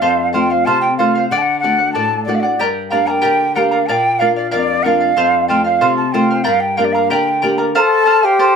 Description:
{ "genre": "andean folk", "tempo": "93 BPM", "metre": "2/4", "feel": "straight", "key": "G minor", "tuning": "A4 = 439 Hz", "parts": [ { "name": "mellow quena", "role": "melody", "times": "0.0-8.6 s", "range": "D5 to Bb5", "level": "-15 LUFS", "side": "right 2 dB", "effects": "none" }, { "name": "charango", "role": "accompaniment", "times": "0.0-8.6 s", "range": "G4 to Bb5", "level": "-18 LUFS", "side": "right 1 dB", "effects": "none" }, { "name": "nylon-string guitar", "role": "accompaniment", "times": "0.0-7.7 s", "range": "F2 to G4", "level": "-19 LUFS", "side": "left 3 dB", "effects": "none" }, { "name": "wooden flute", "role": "second line", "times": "7.8-8.6 s", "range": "G4 to A4", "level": "-15 LUFS", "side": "left 4 dB", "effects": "none" } ], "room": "moderate small room reverb, RT60 0.5 s", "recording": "close, detailed microphones", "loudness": "-12 LUFS", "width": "side -6 dB against mid", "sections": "0.0-7.8 A section", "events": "none", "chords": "0.0 F; 1.3 D; 2.6 Gm; 3.9 Bb; 5.2 F; 6.5 Gm; 7.8 F", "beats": "| 0.03 0.67 | 1.31 1.96 | 2.60 3.25 | 3.89 4.53 | 5.18 5.82 | 6.47 7.11 | 7.75 8.40" }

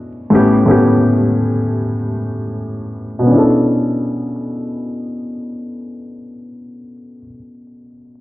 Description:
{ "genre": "hip hop", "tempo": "free time", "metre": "none", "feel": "none", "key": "B minor", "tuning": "A4 = 435 Hz", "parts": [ { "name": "dark upright piano", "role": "accompaniment", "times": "0.0-8.2 s", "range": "A2 to A4", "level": "-14 LUFS", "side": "equal", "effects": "cassette tape, low-pass filter" } ], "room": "moderate spring reverb, RT60 2.3 s", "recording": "vinyl crackle, low-pass filter", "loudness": "-13 LUFS", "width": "side -17 dB against mid", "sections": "0.0-3.3 A section; 3.3-6.2 B section", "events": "filter sweep 0.0-3.3", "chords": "0.3 A9; 3.3 Bm11", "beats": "free time" }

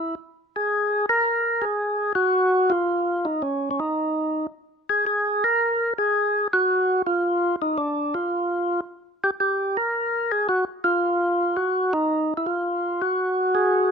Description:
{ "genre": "jazz", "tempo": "111 BPM", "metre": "4/4", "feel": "swing 69% on 8ths", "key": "F# major", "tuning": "A4 = 440 Hz", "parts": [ { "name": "percussive tonewheel organ", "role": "solo", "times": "0.0-13.9 s", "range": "C#4 to A#4", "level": "-20 LUFS", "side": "equal", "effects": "slow rotary speaker" } ], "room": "little or no reverb", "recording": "close, detailed microphones", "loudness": "-21 LUFS", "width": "side -6 dB against mid", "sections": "0.0-13.9 A section", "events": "none", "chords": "none", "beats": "0.18 0.72 | 1.26 1.80 2.34 2.88 | 3.42 3.97 4.51 5.05 | 5.59 6.13 6.67 7.21 | 7.75 8.30 8.84 9.38 | 9.92 10.46 11.00 11.54 | 12.08 12.62 13.17 13.71" }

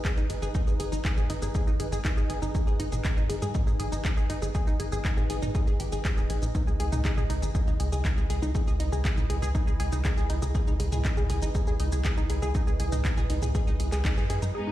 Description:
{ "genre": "melodic techno", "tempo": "120 BPM", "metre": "4/4", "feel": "straight", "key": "unclear", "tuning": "A4 = 438 Hz", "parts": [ { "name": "wide unison pluck", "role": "arpeggios", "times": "0.0-14.7 s", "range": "D#4 to G#4", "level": "-35 LUFS", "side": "left 1 dB", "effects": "sidechain pumping, dub echo" }, { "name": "tight sequencer bass", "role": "bass", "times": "0.0-14.5 s", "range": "D#1 to G#2", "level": "-29 LUFS", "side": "equal", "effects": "sidechain pumping" }, { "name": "electronic kick drum", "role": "drums", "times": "0.0-14.1 s", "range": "none", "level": "-27 LUFS", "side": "equal", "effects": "none" }, { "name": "punchy analog drum machine", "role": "drums", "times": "0.0-14.5 s", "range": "handclaps, hi-hat, shaker, toms", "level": "-36 LUFS", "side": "equal", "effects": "sidechain pumping on perc, sidechain pumping on hats, sidechain pumping on toms" }, { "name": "granular cloud pad", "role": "texture", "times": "0.0-14.7 s", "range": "D#4 to D#5", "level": "-37 LUFS", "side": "right 1 dB", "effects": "built-in reverb, sidechain pumping" }, { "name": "bright studio string section", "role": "sustained chords", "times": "14.5-14.7 s", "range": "G#2 to D#4", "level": "-32 LUFS", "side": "equal", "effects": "sidechain pumping" } ], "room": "digital ambience", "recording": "played on a big sound system in a bare room, large studio reverb", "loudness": "-25 LUFS", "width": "side -14 dB against mid", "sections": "0.0-14.5 A section", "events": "band accent 14.0", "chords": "0.0 G#m; 6.5 C#m7", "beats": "0.05 | 0.55 1.05 1.55 2.05 | 2.55 3.05 3.55 4.05 | 4.55 5.05 5.55 6.05 | 6.55 7.05 7.55 8.05 | 8.55 9.05 9.55 10.05 | 10.55 11.05 11.55 12.05 | 12.55 13.05 13.55 14.05 | 14.55" }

